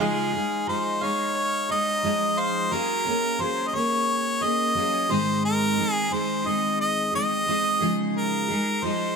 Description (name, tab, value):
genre	pop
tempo	88 BPM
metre	4/4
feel	straight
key	Db major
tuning	A4 = 439 Hz
part	clear harmonica	melody	0.0-9.2 s	Ab4 to Eb5	-24 LUFS	equal	ping-pong delay
part	fingerpicked steel-string acoustic guitar	accompaniment	0.0-9.2 s	Ab2 to Ab4	-26 LUFS	equal	double-tracked left and right
part	mandolin	arpeggios	0.0-3.3 s	Ab3 to F5	-33 LUFS	right 6 dB	none
room	light reverb, studio ambience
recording	bright 1980s-style digital production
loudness	-22 LUFS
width	side -5 dB against mid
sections	0.0-2.7 A section; 2.7-9.2 A section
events	none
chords	0.0 Dbadd9; 2.7 Gbadd9; 5.1 Ab; 7.8 Dbadd9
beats	| 0.00 0.68 1.36 2.04 | 2.72 3.40 4.08 4.76 | 5.44 6.12 6.80 7.48 | 8.16 8.84